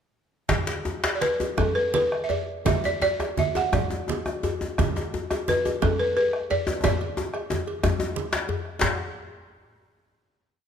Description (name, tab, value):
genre	west african traditional, West African drum ensemble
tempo	110-131 BPM (dotted quarters)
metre	12/8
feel	straight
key	D major pentatonic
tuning	A4 = 437 Hz
part	bombo	percussion	0.5-9.0 s	none	-30 LUFS	equal	none
part	congas	percussion	0.5-9.0 s	none	-30 LUFS	right 7 dB	none
part	cowbell	percussion	0.5-9.0 s	none	-35 LUFS	right 3 dB	none
part	djembe	percussion	0.5-9.0 s	none	-31 LUFS	left 6 dB	none
part	djembe	percussion	0.5-9.0 s	none	-28 LUFS	left 3 dB	none
part	balafon	melody	1.2-8.4 s	A4 to F#5	-24 LUFS	right 1 dB	none
room	moderate recital hall reverb, RT60 1.8 s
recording	close, detailed microphones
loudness	-23 LUFS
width	side -8 dB against mid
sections	0.5-8.8 A section; 8.8-10.7 final hit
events	speeding up 0.5-10.7; drum fill 6.8-8.8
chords	none